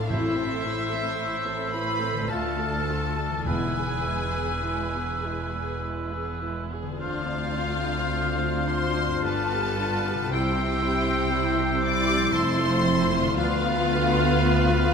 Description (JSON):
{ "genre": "classical, slow romantic movement for symphony orchestra", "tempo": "50-60 BPM", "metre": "3/4", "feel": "rubato", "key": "A minor", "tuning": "A4 = 441 Hz", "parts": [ { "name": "rich studio violin section", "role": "melody", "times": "0.0-14.9 s", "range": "E5 to D6", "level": "-30 LUFS", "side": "left 4 dB", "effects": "none" }, { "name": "rich studio violin section", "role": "second line", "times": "0.0-14.9 s", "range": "E4 to D5", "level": "-34 LUFS", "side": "left 2 dB", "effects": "none" }, { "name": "rich studio viola section", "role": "accompaniment", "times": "0.0-14.9 s", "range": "G3 to A4", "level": "-32 LUFS", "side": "right 1 dB", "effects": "none" }, { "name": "concert harp", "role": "arpeggios", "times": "0.0-14.9 s", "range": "G2 to B4", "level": "-33 LUFS", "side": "left 6 dB", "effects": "none" }, { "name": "rich studio cello section", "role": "bass", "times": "0.0-14.9 s", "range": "D2 to C3", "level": "-32 LUFS", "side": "right 5 dB", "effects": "none" }, { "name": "rich studio double bass section", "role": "bass", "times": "0.0-14.9 s", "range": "E1 to D2", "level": "-31 LUFS", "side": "right 3 dB", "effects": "none" }, { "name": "clear oboe", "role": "second line", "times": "0.1-14.9 s", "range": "A4 to C5", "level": "-33 LUFS", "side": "right 2 dB", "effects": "none" }, { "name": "silver concert flute", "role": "second line", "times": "0.1-14.9 s", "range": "E6 to F6", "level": "-33 LUFS", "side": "left 2 dB", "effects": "none" }, { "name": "mellow French horn section", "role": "sustained chords", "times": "0.1-14.9 s", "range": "A3 to F4", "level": "-30 LUFS", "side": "left 5 dB", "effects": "none" }, { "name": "timpani", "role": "percussion", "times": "0.1-5.2 s", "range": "E2 to A2", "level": "-34 LUFS", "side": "equal", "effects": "none" } ], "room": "wet concert hall reverb, RT60 2.1 s", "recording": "minimal, uncompressed stereo recording", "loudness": "-23 LUFS", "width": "side -6 dB against mid", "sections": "0.0-14.9 A section", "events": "none", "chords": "0.1 Am; 2.3 Dm; 3.5 E; 7.0 Dm7; 9.2 G7; 10.3 C; 12.3 Fmaj7; 13.4 Bdim/D" }